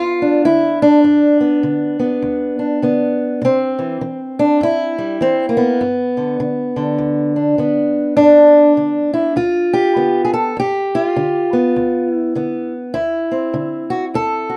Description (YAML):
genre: acoustic country blues, solo or duo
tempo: 101 BPM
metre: 4/4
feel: swing 60% on 8ths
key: G mixolydian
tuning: A4 = 442 Hz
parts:
  - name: fingerpicked acoustic archtop guitar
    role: solo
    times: 0.0-14.6 s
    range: D2 to A4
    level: -16 LUFS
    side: equal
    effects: none
room: wet studio reverb, RT60 0.5 s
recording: dark, warm production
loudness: -16 LUFS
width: mono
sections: 0.0-14.6 A section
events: none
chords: 0.0 G7; 3.4 C; 5.8 G7; 12.9 D7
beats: 0.45 | 1.04 1.64 2.23 2.83 | 3.42 4.01 4.61 5.20 | 5.80 6.39 6.99 7.58 | 8.18 8.77 9.37 9.96 | 10.56 11.15 11.75 12.35 | 12.94 13.54 14.14